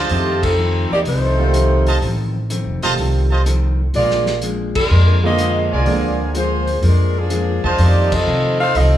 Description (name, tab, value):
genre	jazz, big band swing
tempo	125 BPM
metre	4/4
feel	swing 69% on 8ths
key	F mixolydian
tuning	A4 = 443 Hz
part	warm saxophone section	melody	0.0-9.0 s	Eb3 to F5	-19 LUFS	equal	none
part	clear trumpet section	stabs	0.0-8.2 s	F4 to A5	-22 LUFS	right 2 dB	none
part	upright bass	bass	0.0-9.0 s	E1 to C3	-17 LUFS	equal	none
part	vintage hollow-body jazz guitar	accompaniment	0.1-9.0 s	F2 to D4	-25 LUFS	left 4 dB	none
part	vintage drum kit	drums	0.1-8.9 s	crash cymbal, hi-hat, kick drum, snare drum	-27 LUFS	equal	none
part	clear baby grand piano	accompaniment	1.4-6.6 s	D3 to F4	-23 LUFS	right 6 dB	none
room	moderate recital hall reverb, RT60 1.4 s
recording	small room ambience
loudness	-14 LUFS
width	side -12 dB against mid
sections	0.0-9.0 A section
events	band accent 0.3, 4.7, 8.0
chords	0.1 F7; 3.9 Bb7; 7.8 F7